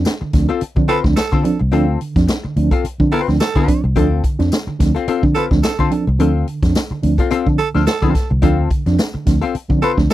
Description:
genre	funk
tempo	108 BPM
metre	4/4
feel	swing 56% on 16ths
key	D dorian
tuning	A4 = 441 Hz
part	mellow reed electric piano	stabs	0.0-10.1 s	D3 to D4	-20 LUFS	right 4 dB	fast tremolo
part	vintage muted fingered electric bass	bass	0.0-10.1 s	C2 to D3	-17 LUFS	equal	none
part	archtop guitar, miked and amplified	accompaniment	0.1-10.1 s	C4 to B4	-20 LUFS	left 8 dB	wah
part	swinging big-band drum kit	drums	0.1-10.1 s	hi-hat, kick drum, snare drum	-18 LUFS	equal	none
part	tambourine	percussion	0.1-10.1 s	none	-34 LUFS	left 4 dB	none
part	growling tenor saxophone	second line	0.9-10.1 s	A4	-21 LUFS	right 7 dB	none
room	little or no reverb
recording	dry, close 1970s-style studio recording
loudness	-14 LUFS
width	side -14 dB against mid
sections	0.0-10.1 A section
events	none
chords	0.0 Dm7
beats	0.06 0.61 1.17 | 1.73 2.29 2.84 3.40 | 3.96 4.52 5.07 5.63 | 6.19 6.75 7.31 7.87 | 8.43 8.98 9.54 10.10

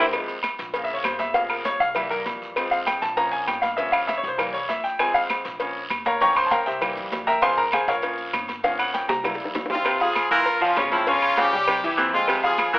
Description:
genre	latin, salsa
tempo	198 BPM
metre	4/4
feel	straight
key	F harmonic minor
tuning	A4 = 440 Hz
part	bright concert grand piano	accompaniment	0.0-12.8 s	C3 to Db6	-23 LUFS	equal	none
part	upright bass	bass	0.0-12.8 s	G1 to F2	-43 LUFS	equal	none
part	agogo bells and timbales	percussion	0.1-12.7 s	none	-29 LUFS	right 1 dB	none
part	claves	percussion	0.1-12.7 s	none	-31 LUFS	right 1 dB	none
part	congas	percussion	0.1-12.7 s	none	-40 LUFS	equal	none
part	cowbell and bongos	percussion	0.1-12.8 s	none	-33 LUFS	left 2 dB	none
part	guiro	percussion	0.1-12.8 s	none	-38 LUFS	right 1 dB	none
part	maracas	percussion	0.1-12.8 s	none	-49 LUFS	right 2 dB	none
part	brilliant horn section	melody	9.7-12.8 s	C4 to Bb4	-22 LUFS	equal	none
part	warm baritone saxophone	second line	9.8-12.8 s	C3 to F3	-25 LUFS	right 1 dB	none
room	moderate large studio reverb, RT60 0.8 s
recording	telephone sound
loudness	-20 LUFS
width	side -20 dB against mid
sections	0.1-9.9 A section; 9.9-12.8 B section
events	grand piano solo 0.1-9.9; drum fill 8.6-9.9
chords	0.1 Fm; 0.7 Bbm; 1.3 Gm7b5; 2.0 C7; 2.6 Fm; 3.2 Bbm; 3.8 Gm7b5; 4.4 C7; 5.0 Fm; 5.6 Bbm; 6.2 Gm7b5; 6.8 C7; 7.4 Fm; 8.0 Bbm; 8.6 Gm7b5; 9.2 C7; 9.9 Fm; 10.5 Bbm; 11.1 Dbmaj7#11/G; 11.7 C; 12.3 Fm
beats	| 0.13 0.44 0.74 1.04 | 1.35 1.65 1.96 2.26 | 2.56 2.87 3.17 3.48 | 3.78 4.08 4.39 4.69 | 4.99 5.30 5.60 5.91 | 6.21 6.51 6.82 7.12 | 7.42 7.73 8.03 8.34 | 8.64 8.94 9.25 9.55 | 9.85 10.16 10.46 10.76 | 11.07 11.37 11.68 11.98 | 12.28 12.59

